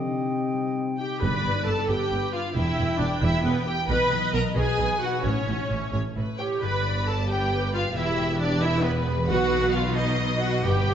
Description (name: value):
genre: cinematic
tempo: 89 BPM (dotted quarters)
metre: 6/8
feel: straight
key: unclear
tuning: A4 = 440 Hz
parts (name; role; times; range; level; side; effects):
- dark clarinet; second line; 0.0-1.0 s; G4; -35 LUFS; left 4 dB; none
- dark cor anglais; second line; 0.0-1.0 s; Eb5; -39 LUFS; right 4 dB; none
- mellow hollow concert flute; second line; 0.0-1.0 s; G5; -34 LUFS; right 1 dB; none
- mellow French horn section; sustained chords; 0.0-1.0 s; C4; -30 LUFS; left 4 dB; none
- concert harp; arpeggios; 0.0-10.9 s; E2 to G5; -32 LUFS; left 6 dB; none
- warm symphonic violin section; melody; 1.0-10.9 s; B4 to B5; -30 LUFS; left 1 dB; none
- rich symphonic viola section; accompaniment; 1.0-10.9 s; B3 to B4; -27 LUFS; right 2 dB; none
- warm symphonic violin section; second line; 1.2-10.9 s; G4 to G5; -33 LUFS; equal; none
- clear symphonic double bass section; bass; 1.2-10.9 s; E1 to B1; -29 LUFS; right 2 dB; none
- warm symphonic cello section; bass; 1.2-10.9 s; E2 to B2; -30 LUFS; right 2 dB; none
- timpani; percussion; 1.2-1.9 s; G2; -32 LUFS; right 1 dB; none
room: moderate scoring stage reverb, RT60 1.6 s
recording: nothing above 7.8 kHz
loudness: -22 LUFS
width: side -9 dB against mid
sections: 0.0-1.2 A section; 1.2-10.9 B section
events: build-up 0.0-1.2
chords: 0.0 Cm; 1.2 G; 2.6 Em; 3.9 B; 5.2 A; 6.6 G; 8.0 Em; 9.3 B